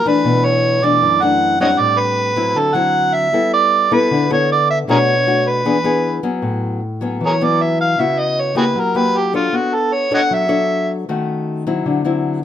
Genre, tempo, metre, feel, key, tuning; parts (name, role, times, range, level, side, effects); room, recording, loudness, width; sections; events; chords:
bossa nova; 155 BPM; 4/4; straight; A major; A4 = 440 Hz
overdriven harmonica; melody; 0.0-10.9 s; F4 to F#5; -15 LUFS; right 2 dB
nylon-string guitar; accompaniment; 0.0-12.4 s; F#2 to C#5; -18 LUFS; left 3 dB
moderate studio reverb, RT60 0.8 s; minimal, uncompressed stereo recording; -14 LUFS; side -10 dB against mid
0.0-6.4 A section; 6.4-12.4 B section
harmonica solo 6.4-12.4
0.2 Bm11; 1.8 Am11; 2.6 D9; 3.3 G69; 4.9 Bm7; 5.7 E7; 6.4 A69; 8.0 C#m7; 8.7 F#7b9; 9.5 Bm9; 11.1 D#m7b5; 11.8 D9